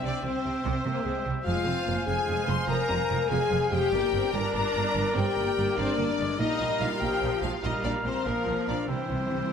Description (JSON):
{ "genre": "cinematic, heroic adventure film score", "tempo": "97 BPM (dotted quarters)", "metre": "12/8", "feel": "straight", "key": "F dorian", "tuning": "A4 = 442 Hz", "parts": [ { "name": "warm symphonic violin section", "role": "melody", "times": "0.0-9.5 s", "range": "Bb4 to C6", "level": "-37 LUFS", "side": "left 5 dB", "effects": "none" }, { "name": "clear studio violin section", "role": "second line", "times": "0.0-9.5 s", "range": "Bb4 to C6", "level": "-35 LUFS", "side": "left 4 dB", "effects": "none" }, { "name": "mellow clarinet", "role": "second line", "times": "0.0-9.5 s", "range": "Bb4 to C5", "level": "-37 LUFS", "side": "right 1 dB", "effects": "none" }, { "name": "mellow cor anglais", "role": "second line", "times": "0.0-9.5 s", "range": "D5 to F5", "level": "-36 LUFS", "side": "right 1 dB", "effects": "none" }, { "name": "mellow small flute group", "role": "second line", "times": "0.0-9.5 s", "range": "G5 to Bb5", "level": "-39 LUFS", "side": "equal", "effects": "none" }, { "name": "warm symphonic viola section", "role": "accompaniment", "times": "0.0-9.5 s", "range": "E3 to D4", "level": "-35 LUFS", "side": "right 2 dB", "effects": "none" }, { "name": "dark French horn section", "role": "sustained chords", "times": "0.0-9.5 s", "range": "Bb3 to C5", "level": "-30 LUFS", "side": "left 5 dB", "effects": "none" }, { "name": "clear symphonic double bass section", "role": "bass", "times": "0.0-9.4 s", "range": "F1 to C2", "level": "-33 LUFS", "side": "right 4 dB", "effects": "none" }, { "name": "warm symphonic cello section", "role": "bass", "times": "0.0-9.4 s", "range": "F2 to C3", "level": "-34 LUFS", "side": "right 3 dB", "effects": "none" }, { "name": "timpani", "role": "percussion", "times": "8.9-9.5 s", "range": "C3", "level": "-36 LUFS", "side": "right 1 dB", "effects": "none" } ], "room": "moderate scoring stage reverb, RT60 1.7 s", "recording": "none", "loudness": "-25 LUFS", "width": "side -7 dB against mid", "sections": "0.0-9.5 A section", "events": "timpani fill 8.9-9.5", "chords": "0.0 C; 1.5 Fm; 3.9 Gm; 6.4 Bbsus4; 8.9 C" }